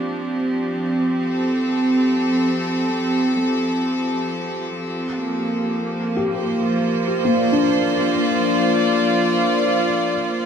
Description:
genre	ambient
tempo	free time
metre	none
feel	none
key	unclear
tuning	A4 = 436 Hz
part	bright chamber string section	sustained chords	0.0-10.5 s	F3 to D5	-18 LUFS	right 1 dB	none
part	felt-muted upright piano	arpeggios	6.2-10.4 s	Bb3 to G4	-22 LUFS	left 4 dB	tape echo
part	twinkling granular texture	texture	10.3-10.5 s	none	barely audible	none	none
room	wet spring reverb, RT60 2.7 s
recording	echo-heavy mix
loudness	-18 LUFS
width	side -7 dB against mid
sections	0.0-10.4 A section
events	none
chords	0.0 Gmadd9/F

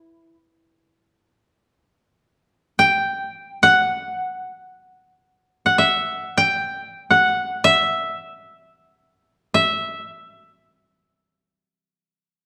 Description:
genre	japanese traditional, Japanese chamber music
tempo	free time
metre	none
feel	none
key	E minor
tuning	A4 = 439 Hz
part	koto	solo	0.0-11.5 s	E4 to G5	-19 LUFS	equal	none
room	moderate recital hall reverb, RT60 1.3 s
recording	worn, warbling old tape, cassette tape, warbly pitch drift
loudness	-19 LUFS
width	mono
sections	0.0-1.4 A section; 1.4-12.5 A section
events	none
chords	none

